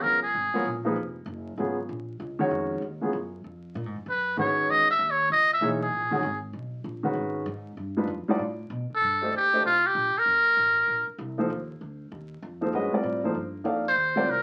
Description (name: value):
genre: modal jazz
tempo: 194 BPM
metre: 4/4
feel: swing 64% on 8ths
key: G# minor, C dorian from 9.0 s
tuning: A4 = 439 Hz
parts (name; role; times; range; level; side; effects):
- trumpet with metal mute; melody; 0.0-0.8, 4.1-6.4, 9.0-11.1, 13.9-14.4 s; F4 to E5; -24 LUFS; equal; none
- warm grand piano; accompaniment; 0.0-14.3 s; C#3 to E#5; -30 LUFS; equal; none
- upright bass; bass; 0.0-14.4 s; E#1 to B2; -40 LUFS; equal; none
room: wet studio reverb, RT60 0.5 s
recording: very old 78 rpm record, vinyl crackle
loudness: -26 LUFS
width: mono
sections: 0.0-9.0 A section; 9.0-14.4 B section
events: none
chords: 0.0 G#13sus4; 4.1 F#13sus4; 7.8 G7b13; 9.0 Cm9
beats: 0.03 | 0.34 0.65 0.96 1.27 | 1.58 1.89 2.20 2.51 | 2.82 3.13 3.44 3.75 | 4.06 4.37 4.68 4.99 | 5.30 5.61 5.92 6.23 | 6.54 6.85 7.16 7.47 | 7.78 8.09 8.40 8.71 | 9.02 9.33 9.64 9.95 | 10.26 10.56 10.87 11.18 | 11.49 11.80 12.11 12.42 | 12.73 13.04 13.35 13.65 | 13.96 14.27